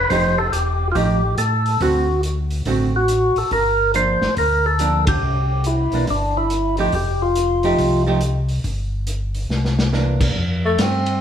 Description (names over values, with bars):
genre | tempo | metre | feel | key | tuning
soul jazz organ trio | 140 BPM | 4/4 | swing 65% on 8ths | unclear | A4 = 440 Hz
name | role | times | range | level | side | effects
percussive tonewheel organ | melody | 0.0-8.0 s | D4 to C5 | -19 LUFS | left 1 dB | slow rotary speaker, overdrive
mellow tonewheel organ | bass | 0.0-11.2 s | E1 to A2 | -21 LUFS | equal | overdrive, chorus vibrato, slow rotary speaker
archtop guitar, miked and amplified | accompaniment | 0.1-10.4 s | D3 to G4 | -22 LUFS | right 3 dB | none
vintage drum kit | drums | 0.1-11.1 s | crash cymbal, hi-hat, kick drum, ride cymbal, snare drum | -26 LUFS | left 1 dB | none
warm tenor saxophone | melody | 10.7-11.2 s | A3 to C4 | -19 LUFS | left 1 dB | none
room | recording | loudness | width
wet stone room reverb, RT60 1.1 s | band playing live in one room | -16 LUFS | side -9 dB against mid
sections
0.0-10.4 A section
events
band accent 5.0; drum fill 9.5-9.9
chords
0.1 F9; 1.8 D7; 3.5 Gm7; 5.2 Cadd9; 6.9 F9; 8.6 N.C.; 9.5 C9; 10.4 Fadd9